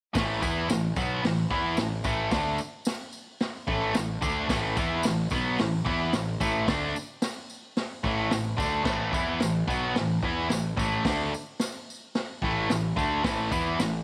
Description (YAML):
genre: garage rock duo or trio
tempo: 110 BPM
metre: 4/4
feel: straight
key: unclear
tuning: A4 = 440 Hz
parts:
  - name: overdriven electric guitar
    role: riff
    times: 0.1-14.0 s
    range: A2 to E4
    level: -29 LUFS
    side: equal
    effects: none
  - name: tambourine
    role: percussion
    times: 0.1-13.9 s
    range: none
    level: -45 LUFS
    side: equal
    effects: none
  - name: fuzz picked electric bass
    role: bass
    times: 0.2-14.0 s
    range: A1 to E2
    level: -36 LUFS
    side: equal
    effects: overdrive
  - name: vintage drum kit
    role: drums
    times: 0.2-13.9 s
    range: crash cymbal, hi-hat, kick drum, snare drum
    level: -34 LUFS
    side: equal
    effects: none
room: studio reverb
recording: none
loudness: -28 LUFS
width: mono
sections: 0.1-14.0 A section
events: none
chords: 0.1 A5